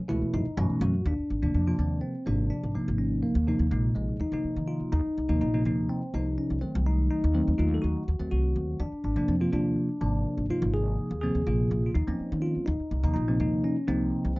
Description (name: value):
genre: electric jazz fusion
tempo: 124 BPM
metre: 4/4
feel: straight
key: Eb dorian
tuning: A4 = 440 Hz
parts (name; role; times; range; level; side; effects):
- bell-like tine electric piano; accompaniment; 0.1-14.4 s; Cb3 to A4; -28 LUFS; equal; phaser
- upright bass; bass; 0.1-14.4 s; Ab1 to Eb3; -28 LUFS; equal; none
room: light reverb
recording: nothing above 7.5 kHz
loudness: -25 LUFS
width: side -22 dB against mid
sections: 0.0-1.1 A section; 1.1-14.4 B section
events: none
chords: 0.0 Gbm7; 1.1 Bb7; 2.8 Ab69; 4.9 Ebsus2; 6.6 Cdim7; 8.8 Bb7; 10.5 Db69; 12.7 Ebsus2